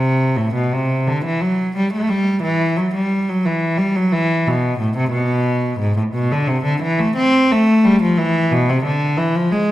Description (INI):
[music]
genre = classical, baroque-style suite movement for unaccompanied cello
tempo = 89 BPM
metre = 4/4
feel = rubato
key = E minor, A minor from 5.8 s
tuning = A4 = 441 Hz
[part]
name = rich cello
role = solo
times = 0.0-9.7 s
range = G#2 to C4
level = -15 LUFS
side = equal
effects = none
[sound]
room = wet recital hall reverb, RT60 1.4 s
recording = dark, warm production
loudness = -15 LUFS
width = side -14 dB against mid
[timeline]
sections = 0.0-9.7 A section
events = none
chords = none